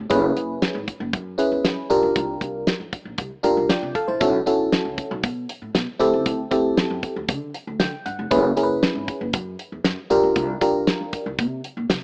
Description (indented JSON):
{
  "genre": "early-eighties boogie funk",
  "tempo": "117 BPM",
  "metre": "4/4",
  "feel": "straight",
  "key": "unclear",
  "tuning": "A4 = 440 Hz",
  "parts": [
    { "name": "upright bass", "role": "bass", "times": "0.0-12.0 s", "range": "E#1 to D3", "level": "-32 LUFS", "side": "equal", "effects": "none" },
    { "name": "FM electric piano", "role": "accompaniment", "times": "0.1-11.3 s", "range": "C4 to A5", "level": "-23 LUFS", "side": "equal", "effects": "chorus, phaser" },
    { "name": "damped 70s drum kit", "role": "drums", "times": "0.1-12.0 s", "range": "hi-hat, kick drum, snare drum", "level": "-25 LUFS", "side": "equal", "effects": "none" }
  ],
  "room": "light reverb",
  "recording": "rough home demo mix, AM radio sound",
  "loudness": "-23 LUFS",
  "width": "mono",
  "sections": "0.0-4.2 A section; 4.2-12.0 B section",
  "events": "FM electric piano fill 3.2-4.2, 7.5-8.3",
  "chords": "0.1 F#9sus4; 1.9 C9sus4; 4.2 B9sus4; 6.0 D9sus4; 8.3 F#9sus4; 10.1 C9sus4"
}